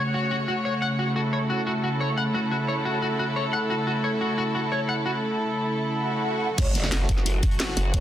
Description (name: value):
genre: dark technical drum and bass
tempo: 177 BPM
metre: 4/4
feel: straight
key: F# minor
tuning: A4 = 438 Hz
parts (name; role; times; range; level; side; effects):
- dark studio string section; sustained chords; 0.0-8.0 s; C#3 to C#5; -26 LUFS; equal; sidechain pumping
- electric guitar at the edge of break-up; arpeggios; 0.1-5.1 s; F#4 to F#5; -28 LUFS; left 2 dB; wide subtle chorus, sidechain pumping, tape echo
- swell and impact; sound effects; 6.0-7.9 s; none; -31 LUFS; equal; none
- dark brass ensemble; stabs; 6.6-8.0 s; A3 to C#5; -37 LUFS; right 2 dB; tape echo
- growl bass; bass; 6.6-8.0 s; F#1; -25 LUFS; equal; chorus
- crunchy breakbeat drum kit; drums; 6.6-8.0 s; hi-hat, snare drum; -38 LUFS; equal; none
- drum and bass drum kit; drums; 6.6-8.0 s; crash cymbal, hi-hat, snare drum; -28 LUFS; equal; none
- electronic kick drum; drums; 6.6-8.0 s; none; -24 LUFS; equal; none
room: light reverb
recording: dense, heavily limited modern master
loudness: -23 LUFS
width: side -11 dB against mid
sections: 0.0-6.6 A section; 6.6-8.0 B section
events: swell 6.0-6.6; drop 6.6-8.0; impact 6.6-7.9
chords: 0.0 F#m